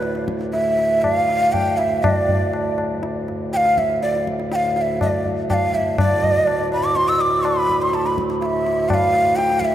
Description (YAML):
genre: indian classical, Hindustani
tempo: 122 BPM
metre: 4/4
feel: straight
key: D raga bageshri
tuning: A4 = 440 Hz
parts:
  - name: breathy bansuri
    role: melody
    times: 0.0-9.7 s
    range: B4 to E6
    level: -19 LUFS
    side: right 1 dB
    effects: none
  - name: pedal harmonium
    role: drone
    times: 0.0-9.7 s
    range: D2 to A2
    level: -24 LUFS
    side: right 1 dB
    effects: none
  - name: tabla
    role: percussion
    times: 0.0-9.7 s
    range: none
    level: -24 LUFS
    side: left 2 dB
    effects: none
room: wet cathedral reverb, RT60 5.2 s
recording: in a vast, echoing space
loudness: -17 LUFS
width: side -11 dB against mid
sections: 0.0-6.0 A section; 6.0-9.7 B section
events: speeding up 0.0-9.7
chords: none